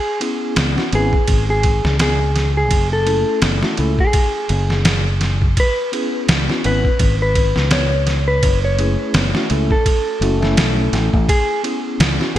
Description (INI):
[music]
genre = trip hop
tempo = 84 BPM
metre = 4/4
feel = swing 57% on 16ths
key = C# minor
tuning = A4 = 441 Hz
[part]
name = mellow electric guitar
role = melody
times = 0.0-12.4 s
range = G#4 to C#5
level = -21 LUFS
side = equal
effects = vintage 12-bit sampler grit, tape echo
[part]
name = tine electric piano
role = accompaniment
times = 0.2-12.4 s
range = A3 to B4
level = -23 LUFS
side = equal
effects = medium tremolo, harmonic tremolo, vintage 12-bit sampler grit, tape echo
[part]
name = trip hop sampler-style drum kit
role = drums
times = 0.2-12.4 s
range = kick drum, ride cymbal, snare drum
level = -18 LUFS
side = equal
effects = gated reverb
[part]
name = fingered electric bass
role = bass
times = 0.6-12.4 s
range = F#1 to C#2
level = -18 LUFS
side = equal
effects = none
[sound]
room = light reverb, digital ambience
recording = bright 1980s-style digital production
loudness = -14 LUFS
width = side -12 dB against mid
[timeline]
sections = 0.0-12.4 A section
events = none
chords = 0.0 C#m7; 2.7 F#m7; 5.6 C#m7; 8.4 F#m7; 11.3 C#m7